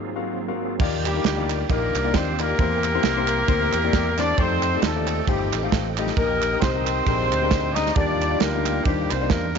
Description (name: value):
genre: uptempo gospel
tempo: 134 BPM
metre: 4/4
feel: swing 56% on 8ths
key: Eb major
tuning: A4 = 440 Hz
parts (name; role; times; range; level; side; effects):
- clear concert grand piano; accompaniment; 0.0-9.6 s; Ab1 to F5; -27 LUFS; left 14 dB; none
- bright tonewheel organ; sustained chords; 0.0-9.6 s; Gb3 to Eb6; -33 LUFS; right 14 dB; slow rotary speaker, chorus vibrato
- warm studio string section; sustained chords; 0.0-0.8 s; Gb3 to F4; -39 LUFS; equal; none
- fingered electric bass; bass; 0.8-9.6 s; G1 to F2; -27 LUFS; equal; none
- modern studio drum kit; drums; 0.8-9.6 s; crash cymbal, kick drum, ride cymbal, snare drum; -25 LUFS; right 4 dB; none
- dark horn section; melody; 1.0-9.6 s; G3 to Eb5; -24 LUFS; left 1 dB; none
- group handclap; percussion; 1.1-9.6 s; none; -32 LUFS; right 16 dB; none
room: small room ambience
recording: 1960s-style stereo with parts hard left and right, nothing above 7.6 kHz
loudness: -20 LUFS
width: side -6 dB against mid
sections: 0.8-9.6 A section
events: none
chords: 0.0 Ab13; 0.8 Ebmaj9; 2.6 C7; 4.4 F13; 6.2 Eb/Bb; 7.1 Bb13; 8.0 Ebmaj9